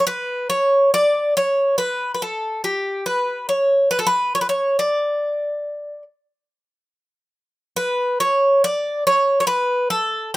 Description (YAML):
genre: greek folk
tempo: 140 BPM (eighths)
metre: 9/8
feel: straight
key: unclear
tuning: A4 = 440 Hz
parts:
  - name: Greek bouzouki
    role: solo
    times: 0.0-10.4 s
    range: G4 to D5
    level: -17 LUFS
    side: equal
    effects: none
room: light reverb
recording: rough home demo mix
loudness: -17 LUFS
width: side -18 dB against mid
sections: 0.0-7.8 A section; 7.8-10.4 A section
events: none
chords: none